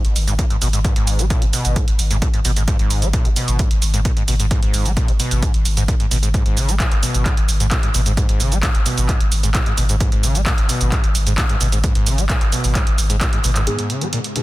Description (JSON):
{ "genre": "driving peak-time techno", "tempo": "131 BPM", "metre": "4/4", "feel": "straight", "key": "G# minor", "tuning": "A4 = 439 Hz", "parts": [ { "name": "screaming distorted acid line", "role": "riff", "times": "0.0-14.4 s", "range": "G#2 to G#3", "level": "-23 LUFS", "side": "equal", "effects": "distortion, wide subtle chorus, sidechain pumping, digital delay" }, { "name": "saturated sub bass", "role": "bass", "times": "0.0-13.7 s", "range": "G#1", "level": "-19 LUFS", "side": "equal", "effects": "overdrive, sidechain pumping, low-pass filter" }, { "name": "punchy analog drum machine", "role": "drums", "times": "0.0-14.4 s", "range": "handclaps, hi-hat, shaker", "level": "-23 LUFS", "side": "right 2 dB", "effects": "none" }, { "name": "electronic kick drum", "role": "drums", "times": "0.4-13.3 s", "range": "none", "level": "-19 LUFS", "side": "equal", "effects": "none" }, { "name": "rave stab", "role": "stabs", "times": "13.7-14.4 s", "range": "D#3 to G#4", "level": "-25 LUFS", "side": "left 1 dB", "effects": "chorus, built-in reverb, sidechain pumping, digital delay" }, { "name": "metallic inharmonic drone", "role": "drone", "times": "14.2-14.4 s", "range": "G#2", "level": "-35 LUFS", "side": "left 4 dB", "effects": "none" }, { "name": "warbly tape-like pad", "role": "texture", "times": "14.3-14.4 s", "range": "none", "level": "barely audible", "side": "none", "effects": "none" } ], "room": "little or no reverb", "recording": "dense, heavily limited modern master", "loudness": "-15 LUFS", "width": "side -18 dB against mid", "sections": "0.0-13.7 A section", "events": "drum fill 13.2-13.7; band accent 13.6", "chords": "0.0 G#m", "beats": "0.39 | 0.84 1.30 1.76 2.22 | 2.68 3.13 3.59 4.05 | 4.51 4.97 5.42 5.88 | 6.34 6.80 7.26 7.71 | 8.17 8.63 9.09 9.55 | 10.01 10.46 10.92 11.38 | 11.84 12.29 12.75 13.21 | 13.67 14.13" }